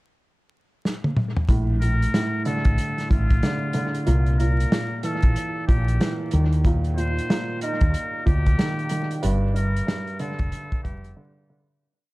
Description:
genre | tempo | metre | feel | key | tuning
hip hop, boom-bap hip-hop | 93 BPM | 4/4 | swing 62% on 16ths | G minor | A4 = 435 Hz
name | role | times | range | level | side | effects
warm soul drum kit | drums | 0.9-11.2 s | hi-hat, kick drum, snare drum, toms | -23 LUFS | equal | none
dark upright piano | accompaniment | 1.5-11.8 s | G2 to Eb4 | -27 LUFS | right 1 dB | cassette tape, high-pass filter, low-pass filter, analog delay
woody fretless electric bass | bass | 1.5-11.1 s | F1 to Eb2 | -21 LUFS | equal | ensemble chorus
trumpet with metal mute | melody | 1.8-11.1 s | F4 to C5 | -31 LUFS | left 2 dB | high-pass filter, low-pass filter, analog delay
room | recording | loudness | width
small room ambience | echo-heavy mix, vinyl crackle | -20 LUFS | side -20 dB against mid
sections
0.0-1.5 pickup bar; 1.5-11.8 verse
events
drum fill 0.8-1.5; fade-out 9.2-11.8; break 11.2-11.8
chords
0.0 N.C.; 1.5 Bbmaj7; 4.1 C7; 6.3 Eb; 9.2 Gm7

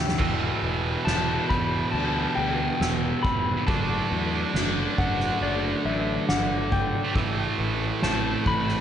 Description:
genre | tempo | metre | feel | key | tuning
post-rock | 69 BPM | 4/4 | straight | E minor | A4 = 437 Hz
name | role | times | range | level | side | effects
clean lap steel guitar | melody | 0.0-8.8 s | D5 to B5 | -30 LUFS | left 3 dB | slapback echo, analog delay
shimmering ambient pad | sustained chords | 0.0-8.8 s | D3 to C5 | -41 LUFS | left 2 dB | none
clean electric guitar | arpeggios | 0.0-8.8 s | A2 to D4 | -34 LUFS | left 5 dB | slapback echo, analog delay
glockenspiel with soft plastic mallets | arpeggios | 0.0-8.8 s | D6 to G6 | -40 LUFS | equal | slapback echo, analog delay
fuzz picked electric bass | bass | 0.0-8.8 s | E1 to E2 | -30 LUFS | equal | overdrive
soft-mallet drum kit | drums | 0.1-8.8 s | crash cymbal, kick drum, snare drum | -28 LUFS | equal | none
tight distorted guitar | riff | 0.2-8.8 s | E2 to D4 | -28 LUFS | right 6 dB | distortion
room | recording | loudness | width
moderate lush hall reverb, RT60 2.7 s | big arena sound, nothing above 10.3 kHz | -22 LUFS | side -9 dB against mid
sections
0.2-8.8 A section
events
drum fill 0.0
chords
0.2 Em; 3.7 D/F#; 7.2 Am

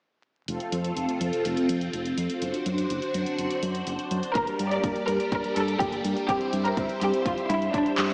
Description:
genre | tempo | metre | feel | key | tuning
italo disco | 124 BPM | 4/4 | straight | F major | A4 = 440 Hz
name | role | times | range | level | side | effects
string machine, full ensemble | sustained chords | 0.5-8.1 s | G3 to E5 | -31 LUFS | equal | phaser, ensemble chorus, vintage 12-bit sampler grit
fingered electric bass | bass | 0.5-8.1 s | F1 to G2 | -33 LUFS | equal | tube saturation, low-pass filter
house drum kit | drums | 0.5-8.1 s | handclaps, hi-hat | -37 LUFS | equal | overdrive, studio reverb
rich studio violin section | melody | 4.4-8.1 s | D4 to D5 | -30 LUFS | equal | tape echo
mellow synth brass | stabs | 4.4-8.1 s | G3 to C5 | -36 LUFS | equal | chorus
electronic kick drum | drums | 4.4-7.8 s | none | -34 LUFS | equal | overdrive, studio reverb
room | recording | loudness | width
wet plate reverb, RT60 2.1 s | dreamy mix soaked in reverb, vinyl crackle, small speaker sound | -27 LUFS | mono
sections
0.5-8.1 A section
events
drum fill 8.0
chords
0.5 F; 2.4 D7/F#; 4.4 Gm; 6.3 C/G

